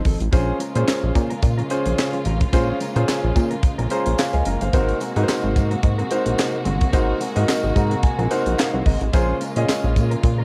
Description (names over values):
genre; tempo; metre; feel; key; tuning
early-eighties boogie funk; 109 BPM; 4/4; swing 56% on 16ths; Bb minor; A4 = 440 Hz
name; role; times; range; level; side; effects
mellow electric guitar; riff; 0.0-10.4 s; F3 to C5; -34 LUFS; equal; subtle chorus, cassette tape
tight funk drum kit; drums; 0.0-10.4 s; handclaps, hi-hat, kick drum, snare drum; -23 LUFS; equal; cassette tape
chorused synth bass; bass; 0.1-10.4 s; Gb1 to Bb2; -24 LUFS; equal; none
tambourine; percussion; 0.1-10.1 s; none; -43 LUFS; equal; none
clear concert grand piano; accompaniment; 0.3-10.1 s; Db4 to Bb5; -26 LUFS; equal; cassette tape
warm studio string section; sustained chords; 0.3-10.4 s; C3 to Gb4; -31 LUFS; equal; cassette tape
room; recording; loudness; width
light reverb, studio ambience; home recording on cassette; -20 LUFS; mono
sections
0.3-10.4 A section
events
grand piano fill 3.6-4.7, 7.5-9.1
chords
0.3 Bbm7; 4.7 Ab9; 9.1 Bbm7